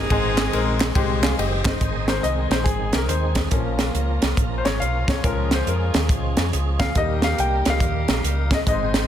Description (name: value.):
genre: uptempo gospel.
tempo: 140 BPM.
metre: 4/4.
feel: swing 64% on 8ths.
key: Ab major.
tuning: A4 = 440 Hz.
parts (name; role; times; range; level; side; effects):
warm saxophone section; melody; 0.0-0.8 s; C4 to Ab4; -27 LUFS; right 1 dB; none.
bright grand piano; accompaniment; 0.0-9.1 s; Ab2 to G5; -25 LUFS; left 4 dB; none.
tonewheel organ; sustained chords; 0.0-9.1 s; Eb3 to Eb5; -31 LUFS; right 3 dB; slow rotary speaker, chorus vibrato.
fingered electric bass; bass; 0.0-9.0 s; Gb1 to F2; -24 LUFS; equal; none.
crisp fusion drum kit; drums; 0.1-9.0 s; hi-hat, kick drum, ride cymbal, snare drum; -22 LUFS; right 1 dB; none.
group handclap; percussion; 0.4-1.7 s; none; -33 LUFS; right 2 dB; none.
muted French horn section; sustained chords; 1.8-9.1 s; Eb3 to Ab4; -35 LUFS; right 1 dB; none.
room: small room ambience.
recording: dense, heavily limited modern master.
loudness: -19 LUFS.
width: side -10 dB against mid.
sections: 0.0-1.8 A section; 1.8-9.1 B section.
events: grand piano solo 1.8-9.1.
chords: 0.1 Ab; 3.5 Bbm; 5.2 Db; 7.0 Eb.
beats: | 0.10 0.53 0.95 1.38 | 1.81 2.24 2.67 3.10 | 3.52 3.95 4.38 4.81 | 5.24 5.67 6.10 6.53 | 6.95 7.38 7.81 8.24 | 8.67.